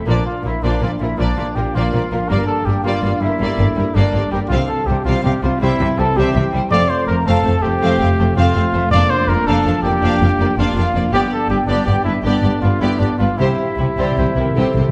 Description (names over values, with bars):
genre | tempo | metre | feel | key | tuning
cinematic | 108 BPM (dotted quarters) | 12/8 | straight | unclear | A4 = 440 Hz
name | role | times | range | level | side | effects
flute section | second line | 0.0-14.9 s | D5 to D6 | -30 LUFS | equal | none
dark French horn section | sustained chords | 0.0-14.9 s | E3 to G4 | -27 LUFS | equal | none
concert harp | arpeggios | 0.0-14.9 s | F2 to D5 | -29 LUFS | equal | none
warm symphonic violin section | melody | 0.1-14.8 s | G4 to F5 | -30 LUFS | equal | none
rich symphonic violin section | second line | 0.1-14.8 s | G3 to G4 | -30 LUFS | equal | none
warm symphonic viola section | accompaniment | 0.1-14.8 s | F3 to C4 | -28 LUFS | equal | none
mellow trumpet | stabs | 0.1-14.9 s | D4 to D5 | -23 LUFS | equal | none
rich symphonic cello section | bass | 0.1-14.8 s | F2 to C3 | -24 LUFS | equal | none
rich symphonic double bass section | bass | 0.1-14.8 s | F1 to C2 | -23 LUFS | equal | none
timpani | percussion | 4.5-5.0, 8.9-9.4, 13.4-14.9 s | F2 to C3 | -26 LUFS | equal | none
dark clarinet | second line | 14.0-14.9 s | A4 to D5 | -28 LUFS | equal | none
room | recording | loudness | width
wet recital hall reverb, RT60 1.4 s | none | -17 LUFS | mono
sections
0.0-14.9 A section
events
timpani fill 13.4-14.9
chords
0.1 Bb; 2.3 Gm; 4.5 Csus4; 5.6 C; 6.7 F; 11.1 G; 13.4 C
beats
| 0.07 0.63 1.18 1.74 | 2.29 2.85 3.40 3.96 | 4.51 5.06 5.62 6.17 | 6.72 7.27 7.82 8.37 | 8.92 9.48 10.03 10.58 | 11.14 11.69 12.25 12.82 | 13.40 13.98 14.56